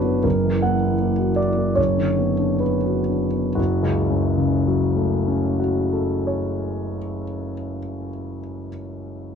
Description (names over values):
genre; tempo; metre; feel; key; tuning
classical, romantic character piece for solo piano; 61-81 BPM; 2/4; rubato; F# minor; A4 = 440 Hz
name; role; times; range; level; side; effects
warm concert grand piano; solo; 0.0-9.3 s; F#1 to F#5; -20 LUFS; equal; none
room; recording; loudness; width
light reverb; worn, warbling old tape, cassette tape, warbly pitch drift; -19 LUFS; side -7 dB against mid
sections
0.0-3.6 A section; 3.6-7.2 B section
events
slowing down 0.0-3.6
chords
0.2 F#7; 1.8 Bm/F#; 3.6 F#m